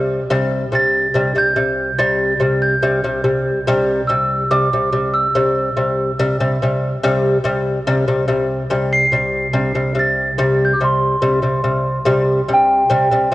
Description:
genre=mongolian traditional, Mongolian folk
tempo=71 BPM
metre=4/4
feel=straight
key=C gong mode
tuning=A4 = 444 Hz
part: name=lute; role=arpeggios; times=0.0-13.3 s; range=C3 to G3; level=-17 LUFS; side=left 1 dB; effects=cassette tape
part: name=warm double bass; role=drone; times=0.0-13.3 s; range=C2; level=-27 LUFS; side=right 2 dB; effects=cassette tape
part: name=large celesta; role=melody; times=0.8-13.3 s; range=G5 to C7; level=-18 LUFS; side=right 1 dB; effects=cassette tape
room=moderate lush hall reverb, RT60 2.6 s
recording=home recording on cassette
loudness=-14 LUFS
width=side -17 dB against mid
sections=0.0-13.3 A section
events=none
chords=0.0 C5

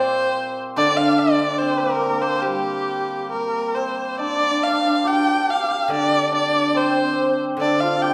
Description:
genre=chinese traditional, Chinese chamber ensemble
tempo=71 BPM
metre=2/4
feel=rubato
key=G yu mode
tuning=A4 = 440 Hz
part: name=rich erhu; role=melody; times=0.0-8.1 s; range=G4 to G5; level=-23 LUFS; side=equal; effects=none
part: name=hammered dulcimer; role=second line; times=0.0-8.1 s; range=G3 to G4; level=-24 LUFS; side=equal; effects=none
part: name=steel-string zither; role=accompaniment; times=0.0-3.3, 5.9-8.1 s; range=Bb2 to D3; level=-30 LUFS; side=equal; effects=none
room=wet recital hall reverb, RT60 1.3 s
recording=recorded in a church or concert hall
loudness=-20 LUFS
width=mono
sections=0.0-4.2 A section; 4.2-8.1 B section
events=none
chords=none

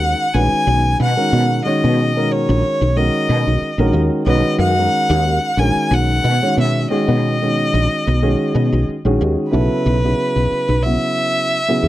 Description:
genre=electric jazz fusion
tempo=92 BPM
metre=4/4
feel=swing 54% on 16ths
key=B major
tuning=A4 = 437 Hz
part: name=clear violin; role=melody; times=0.0-11.9 s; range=B4 to G#5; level=-19 LUFS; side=equal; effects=none
part: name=dark grand piano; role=accompaniment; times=0.0-11.9 s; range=C#3 to C#5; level=-19 LUFS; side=equal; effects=none
part: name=woody fretless electric bass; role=bass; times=0.0-11.9 s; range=A#1 to B2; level=-17 LUFS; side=equal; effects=ensemble chorus
room=little or no reverb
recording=dry, close 1970s-style studio recording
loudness=-14 LUFS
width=side -14 dB against mid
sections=0.0-9.5 A section; 9.5-11.9 B section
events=none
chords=0.0 Bmaj9; 9.5 B7sus4

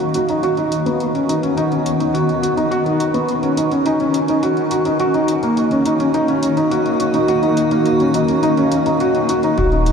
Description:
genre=piano and strings electronica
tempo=105 BPM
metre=4/4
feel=straight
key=Eb minor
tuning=A4 = 440 Hz
part: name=granular cloud pad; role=sustained chords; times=0.0-9.9 s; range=Eb3 to Gb4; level=-21 LUFS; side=equal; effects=built-in reverb, sidechain pumping
part: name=felt-muted upright piano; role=riff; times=0.0-9.9 s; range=Bb3 to Gb4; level=-16 LUFS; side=equal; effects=ping-pong delay
part: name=electronic hi-hat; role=drums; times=0.0-9.9 s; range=none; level=-34 LUFS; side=left 1 dB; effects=high-pass filter on hats, high-pass filter on room
part: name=warm sub bass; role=bass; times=9.6-9.9 s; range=Eb1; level=-17 LUFS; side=equal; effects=sidechain pumping
part: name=electronic kick drum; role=drums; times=9.6-9.7 s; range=none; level=-24 LUFS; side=equal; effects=none
room=wet huge ambient reverb, RT60 7.3 s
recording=dreamy mix soaked in reverb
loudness=-14 LUFS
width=side -6 dB against mid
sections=0.0-9.6 A section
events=build-up 0.0-9.6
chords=0.4 B/D#; 5.0 Ebm

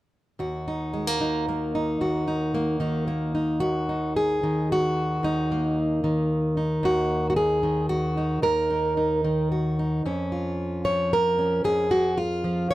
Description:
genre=folk, solo fingerstyle acoustic guitar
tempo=112 BPM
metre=3/4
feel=rubato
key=Eb minor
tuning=A4 = 440 Hz
part: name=fingerpicked plugged-in steel-string acoustic guitar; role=solo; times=0.4-12.7 s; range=Eb2 to Db5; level=-22 LUFS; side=equal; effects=none
room=light reverb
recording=dry, close 1970s-style studio recording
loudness=-22 LUFS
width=side -16 dB against mid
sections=0.4-3.6 A section; 3.6-12.7 B section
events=none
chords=0.4 Ebm; 10.0 Db/F

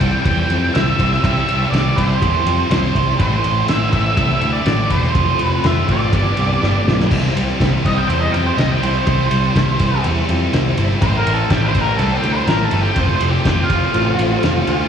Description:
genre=classic rock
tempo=123 BPM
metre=4/4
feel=straight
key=C major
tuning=A4 = 440 Hz
part: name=octave-fuzz lead guitar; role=melody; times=0.0-14.9 s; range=F4 to G5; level=-20 LUFS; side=right 1 dB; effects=distortion, slapback echo
part: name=mellow tonewheel organ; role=sustained chords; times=0.0-14.9 s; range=G3 to D5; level=-26 LUFS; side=left 1 dB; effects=slow rotary speaker, chorus vibrato
part: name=tight distorted guitar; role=riff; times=0.0-14.9 s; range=F2 to G4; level=-23 LUFS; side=equal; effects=distortion, slapback echo
part: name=fuzz picked electric bass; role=bass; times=0.0-14.8 s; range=E1 to F2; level=-18 LUFS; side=equal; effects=overdrive
part: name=cloth-damped thuddy drum kit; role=drums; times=0.0-14.8 s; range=crash cymbal, kick drum, ride cymbal, snare drum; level=-20 LUFS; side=equal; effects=none
room=light reverb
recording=live gig heard through the venue's PA, recital hall reverb, small room ambience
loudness=-14 LUFS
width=side -8 dB against mid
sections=0.0-7.1 A section; 7.1-14.9 B section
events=drum fill 6.6-7.1; lead electric guitar solo 7.1-14.9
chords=0.0 C; 3.2 Am; 5.2 F; 6.1 G; 7.1 C; 11.0 Am; 13.0 F

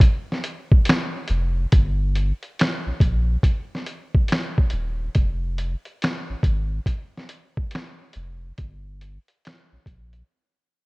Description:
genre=lo-fi hip hop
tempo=70 BPM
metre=4/4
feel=swing 65% on 16ths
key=unclear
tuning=A4 = 440 Hz
part: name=lo-fi sampler-style drum kit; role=drums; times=0.0-10.3 s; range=finger snaps, hi-hat, kick drum, snare drum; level=-19 LUFS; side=equal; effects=none
part: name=soft dub sub bass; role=bass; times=1.3-10.2 s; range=Eb1 to Bb1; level=-24 LUFS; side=equal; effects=none
room=little or no reverb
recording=cassette tape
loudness=-20 LUFS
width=side -26 dB against mid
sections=0.0-10.9 A section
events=fade-out 0.0-10.9; break 10.3-10.9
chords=none

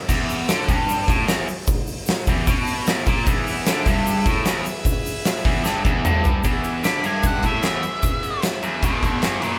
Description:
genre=garage rock duo or trio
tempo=151 BPM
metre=4/4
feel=straight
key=E mixolydian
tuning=A4 = 440 Hz
part: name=biting overdriven guitar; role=riff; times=0.1-9.6 s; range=E2 to D3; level=-25 LUFS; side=equal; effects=spring reverb
part: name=oversized low-tuned drum kit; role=drums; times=0.1-9.5 s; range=crash cymbal, hi-hat, kick drum, ride cymbal, snare drum, toms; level=-24 LUFS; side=equal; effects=none
part: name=egg shaker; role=percussion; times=0.1-9.5 s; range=none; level=-37 LUFS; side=equal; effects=none
part: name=combo organ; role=sustained chords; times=3.3-9.6 s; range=G#4 to E5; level=-32 LUFS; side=equal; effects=phaser
part: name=octave-fuzz lead guitar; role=melody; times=6.9-9.6 s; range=G#4 to B5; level=-28 LUFS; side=equal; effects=distortion
room=light reverb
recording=band playing live in one room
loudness=-21 LUFS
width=mono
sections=0.1-6.5 A section; 6.5-9.6 B section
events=drum fill 5.7-6.5; lead electric guitar solo 6.5-9.6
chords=0.1 E

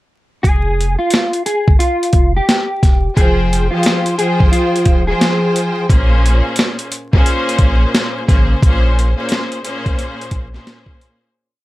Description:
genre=hip hop, boom-bap hip-hop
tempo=88 BPM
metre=4/4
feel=swing 62% on 16ths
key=F minor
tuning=A4 = 440 Hz
part: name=mellow electric guitar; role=melody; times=0.4-5.8 s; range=F4 to Ab4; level=-18 LUFS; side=equal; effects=ensemble chorus, high-pass filter, low-pass filter, slapback echo
part: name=saturated sub bass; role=bass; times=0.4-10.6 s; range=Eb1 to C2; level=-16 LUFS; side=equal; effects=none
part: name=boom bap sampler-style drum kit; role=drums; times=0.4-11.2 s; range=hi-hat, kick drum, snare drum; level=-14 LUFS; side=equal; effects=none
part: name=bright studio string section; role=accompaniment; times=3.2-11.3 s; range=Bb2 to G5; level=-18 LUFS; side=left 1 dB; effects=high-pass filter, low-pass filter
room=little or no reverb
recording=vinyl crackle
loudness=-12 LUFS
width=side -17 dB against mid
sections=0.4-11.3 verse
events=fade-out 8.6-11.3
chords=0.4 Fmadd9; 5.9 Bbm7

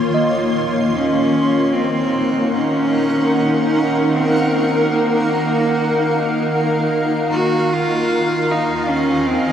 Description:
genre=ambient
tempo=75 BPM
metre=4/4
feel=straight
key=Eb dorian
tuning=A4 = 440 Hz
part: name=granular cloud pad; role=sustained chords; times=0.0-9.5 s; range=Eb3 to C6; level=-18 LUFS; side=equal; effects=built-in reverb, shimmer reverb
part: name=bell-like tine electric piano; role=arpeggios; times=0.0-1.3 s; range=Eb5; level=-26 LUFS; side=right 2 dB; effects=analog chorus, shimmer reverb, diffuse ambient delay
part: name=bright cello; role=melody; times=0.9-9.5 s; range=Bb3 to Gb4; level=-19 LUFS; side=equal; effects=diffuse ambient delay
part: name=bowed-like drone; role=drone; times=2.4-9.5 s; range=Eb3 to Bb3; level=-24 LUFS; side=equal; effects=built-in reverb
room=wet huge ambient reverb, RT60 7.8 s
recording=dreamy mix soaked in reverb, cassette tape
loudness=-15 LUFS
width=side -9 dB against mid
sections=0.9-9.5 A section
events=none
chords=0.0 Bbm/Eb; 0.9 Ebm9; 7.3 Fm7/Eb

